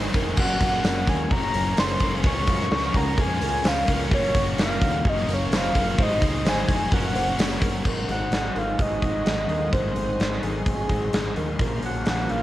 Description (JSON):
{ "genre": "rock, shoegaze and dream pop", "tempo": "128 BPM", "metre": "4/4", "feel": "straight", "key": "unclear", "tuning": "A4 = 440 Hz", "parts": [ { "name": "string machine, violins", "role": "sustained chords", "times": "0.0-12.4 s", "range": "Ab4 to Db6", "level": "-39 LUFS", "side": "equal", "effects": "none" }, { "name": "fingerpicked twelve-string acoustic guitar", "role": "arpeggios", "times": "0.0-12.4 s", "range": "F4 to Db5", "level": "-35 LUFS", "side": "right 7 dB", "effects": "lush chorus, cassette tape, tape echo" }, { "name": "crunchy overdriven guitar", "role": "riff", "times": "0.0-12.4 s", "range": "Gb2 to Eb4", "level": "-30 LUFS", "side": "left 6 dB", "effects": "analog chorus, cassette tape" }, { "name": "distorted electric guitar", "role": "riff", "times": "0.0-7.8 s", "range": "Gb2 to Eb4", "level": "-32 LUFS", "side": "equal", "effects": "overdrive, cassette tape" }, { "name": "twangy electric guitar", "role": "riff", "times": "0.0-12.4 s", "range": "Bb2 to C5", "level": "-37 LUFS", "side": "right 7 dB", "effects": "none" }, { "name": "growling fingered electric bass", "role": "bass", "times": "0.0-12.4 s", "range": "F1 to Gb2", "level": "-30 LUFS", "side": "equal", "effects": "overdrive" }, { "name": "tambourine", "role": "percussion", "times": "0.0-7.7 s", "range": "none", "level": "-45 LUFS", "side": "right 10 dB", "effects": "none" }, { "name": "huge arena drum kit", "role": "drums", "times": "0.1-12.4 s", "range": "crash cymbal, hi-hat, kick drum, snare drum", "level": "-24 LUFS", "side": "equal", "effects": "cassette tape" }, { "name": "soft octave-layered synth lead", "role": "melody", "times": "0.4-12.4 s", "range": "Ab4 to Db6", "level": "-27 LUFS", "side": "equal", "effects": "chorus, cassette tape, tape echo" } ], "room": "light reverb", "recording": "home recording on cassette", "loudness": "-21 LUFS", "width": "side -14 dB against mid", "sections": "0.0-7.9 A section; 7.9-12.4 B section", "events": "none", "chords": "0.4 Gbmaj7; 2.2 Db6; 4.1 Gbmaj7; 6.0 Ab7; 6.9 Gbmaj7; 7.9 Ab7; 11.6 Bbmadd9" }